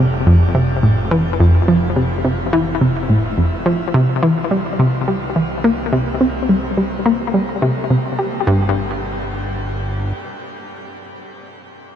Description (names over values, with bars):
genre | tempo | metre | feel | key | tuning
ambient, sequencer-driven space music | 106 BPM | 4/4 | straight | unclear | A4 = 443 Hz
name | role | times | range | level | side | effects
analog pluck | riff | 0.0-8.7 s | F2 to G4 | -15 LUFS | equal | chorus, vintage 12-bit sampler grit, ping-pong delay
fat analog bass | bass | 0.0-10.1 s | F1 to C2 | -26 LUFS | equal | none
room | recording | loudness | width
moderate shimmer reverb, RT60 8.2 s | cassette tape | -14 LUFS | side -9 dB against mid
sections
0.0-8.5 A section; 8.5-10.7 B section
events
fade-out on analog synth bass 0.0-8.5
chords
0.0 F; 3.9 C; 8.5 N.C.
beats
0.55 1.11 | 1.68 2.24 2.81 3.38 | 3.94 4.51 5.07 5.64 | 6.21 6.77 7.34 7.90 | 8.47 9.04 9.60